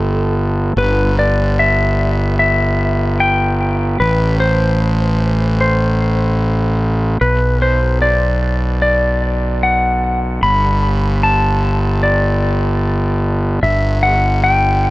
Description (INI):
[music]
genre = post-rock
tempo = 75 BPM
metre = 4/4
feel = straight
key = unclear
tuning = A4 = 440 Hz
[part]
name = clean lap steel guitar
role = melody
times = 0.0-14.9 s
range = A4 to B5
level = -17 LUFS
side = left 1 dB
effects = analog delay
[part]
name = fuzz fingered electric bass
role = bass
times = 0.0-14.9 s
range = G1 to B1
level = -15 LUFS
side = equal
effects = overdrive
[sound]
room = digital ambience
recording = dark, warm production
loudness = -13 LUFS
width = side -19 dB against mid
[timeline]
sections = 0.0-14.9 A section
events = none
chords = 0.0 N.C.; 4.0 Am; 7.2 Bm; 10.4 G5